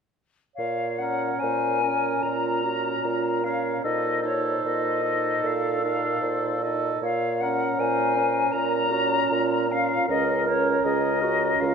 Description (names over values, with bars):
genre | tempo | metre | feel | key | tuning
classical, slow romantic movement for wind quintet | 70-81 BPM | 4/4 | rubato | Bb minor | A4 = 440 Hz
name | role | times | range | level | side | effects
silver concert flute | melody | 0.6-11.7 s | Db5 to Bb5 | -26 LUFS | left 6 dB | none
warm clarinet | accompaniment | 0.6-11.7 s | F4 to Eb5 | -31 LUFS | right 8 dB | none
mellow bassoon | bass | 0.6-11.7 s | Db2 to Bb2 | -29 LUFS | right 2 dB | none
mellow oboe | second line | 1.0-11.7 s | A4 to Bb4 | -29 LUFS | right 2 dB | none
warm French horn | accompaniment | 1.0-11.7 s | Db4 to Eb4 | -30 LUFS | right 2 dB | none
room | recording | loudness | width
wet recital hall reverb, RT60 1.7 s | minimal, uncompressed stereo recording | -22 LUFS | side -6 dB against mid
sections
0.6-11.7 A section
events
none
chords
0.6 Bbm; 3.8 F7/Bb; 7.0 Bbm; 10.1 Bbm/Db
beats
| 0.58 1.42 2.23 3.04 | 3.84 4.65 5.44 6.23 | 7.02 7.79 8.53 9.31 | 10.09 10.86 11.61